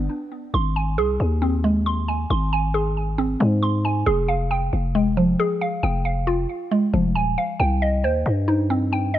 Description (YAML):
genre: hip hop, trap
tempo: 136 BPM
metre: 4/4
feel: half-time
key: unclear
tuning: A4 = 440 Hz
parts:
  - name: mallet-like synth pluck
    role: arpeggios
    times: 0.0-9.2 s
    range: F3 to C6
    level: -22 LUFS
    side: right 1 dB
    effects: chorus, low-pass filter, tape echo
  - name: growling 808-style bass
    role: bass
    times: 0.0-9.2 s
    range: Eb1 to Ab2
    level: -22 LUFS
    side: equal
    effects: none
room: light reverb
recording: none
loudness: -19 LUFS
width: side -12 dB against mid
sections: 0.5-9.2 A section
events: stop 0.1-0.5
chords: 0.0 G; 0.5 Ab; 4.1 Fmadd9; 7.6 Cm